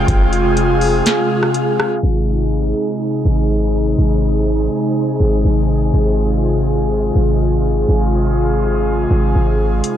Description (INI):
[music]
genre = hip hop, atmospheric cloud-rap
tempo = 123 BPM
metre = 4/4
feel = half-time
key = Ab major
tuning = A4 = 444 Hz
[part]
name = airy breathy pad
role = sustained chords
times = 0.0-10.0 s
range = C3 to Ab4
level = -16 LUFS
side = equal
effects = chorus, sidechain pumping
[part]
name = warm 808-style bass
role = bass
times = 0.0-9.8 s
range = F1 to Ab1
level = -16 LUFS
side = equal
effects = none
[part]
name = wind-like tuned noise texture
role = texture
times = 0.0-9.8 s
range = Eb4 to Ab5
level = -28 LUFS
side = equal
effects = built-in reverb
[part]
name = booming analog drum machine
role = drums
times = 0.1-1.9, 9.8-10.0 s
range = hi-hat, kick drum, rim click, snare drum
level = -19 LUFS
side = equal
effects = none
[sound]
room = digital ambience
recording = low-pass filter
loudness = -14 LUFS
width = side -10 dB against mid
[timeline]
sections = 0.0-2.0 A section; 2.0-9.8 B section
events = kick muted 1.1-2.0; filter sweep 2.0-9.8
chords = 0.0 Fm; 2.0 Ab